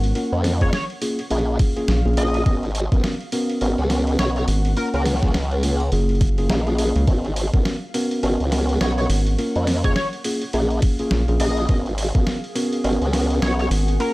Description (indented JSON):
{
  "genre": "glitch hop",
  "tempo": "104 BPM",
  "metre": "4/4",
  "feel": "swing 59% on 16ths",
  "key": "G# dorian",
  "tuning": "A4 = 440 Hz",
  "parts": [
    { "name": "tine electric piano", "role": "stabs", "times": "0.0-14.1 s", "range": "A#3 to A#4", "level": "-24 LUFS", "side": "equal", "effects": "sidechain pumping, analog delay" },
    { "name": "rubbery square bass", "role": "bass", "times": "0.0-14.0 s", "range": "F#1 to C#2", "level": "-19 LUFS", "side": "equal", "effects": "none" },
    { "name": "boom bap sampler-style drum kit", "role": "drums", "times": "0.0-14.1 s", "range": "hi-hat, rim click, snare drum", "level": "-28 LUFS", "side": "equal", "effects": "overdrive, small room reverb" },
    { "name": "ethereal airy pad", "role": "texture", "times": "0.0-14.1 s", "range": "G#4", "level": "-36 LUFS", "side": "left 1 dB", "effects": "ensemble chorus, built-in reverb, phaser, sidechain pumping" },
    { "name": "formant-sweep wobble bass", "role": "bass", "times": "0.3-13.7 s", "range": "G#1 to E#2", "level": "-21 LUFS", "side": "equal", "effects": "chorus" },
    { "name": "sync lead", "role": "melody", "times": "0.6-5.0, 8.8-14.1 s", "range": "A#4 to D#5", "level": "-30 LUFS", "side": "equal", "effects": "ensemble chorus, analog delay" },
    { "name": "electronic kick drum", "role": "drums", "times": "0.6-12.2 s", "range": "none", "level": "-19 LUFS", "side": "equal", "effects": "overdrive, small room reverb" }
  ],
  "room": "little or no reverb",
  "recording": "dry, gritty hardware recording",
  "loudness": "-18 LUFS",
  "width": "side -20 dB against mid",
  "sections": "0.0-14.1 A section",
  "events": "none",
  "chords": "0.2 A#m7; 2.5 G#m11; 4.8 F#maj7; 7.1 G#m11; 9.4 A#m7; 11.7 G#m11"
}